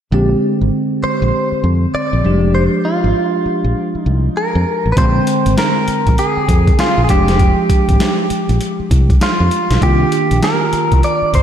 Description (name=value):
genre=R&B, new jack swing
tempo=99 BPM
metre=4/4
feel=swing 63% on 16ths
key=F dorian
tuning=A4 = 440 Hz
part: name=bell-like tine electric piano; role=accompaniment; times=0.1-11.4 s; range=D3 to G5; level=-18 LUFS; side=right 1 dB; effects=wide subtle chorus
part: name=fingered electric bass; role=bass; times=0.1-11.4 s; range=F1 to F2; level=-15 LUFS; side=equal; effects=none
part: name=direct-recorded clean electric guitar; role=melody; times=1.0-11.4 s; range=F4 to D5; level=-17 LUFS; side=equal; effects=wide subtle chorus, diffuse ambient delay
part: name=boom bap sampler-style drum kit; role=drums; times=5.0-11.4 s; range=hi-hat, kick drum, snare drum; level=-15 LUFS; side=equal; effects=none
room=wet lush hall reverb, RT60 2.4 s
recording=dreamy mix soaked in reverb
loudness=-12 LUFS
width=side -9 dB against mid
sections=0.1-5.0 A section; 5.0-11.4 B section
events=none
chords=0.1 Bb13; 2.2 Fm69; 5.0 Bb13; 7.1 Fm69; 9.8 Cm11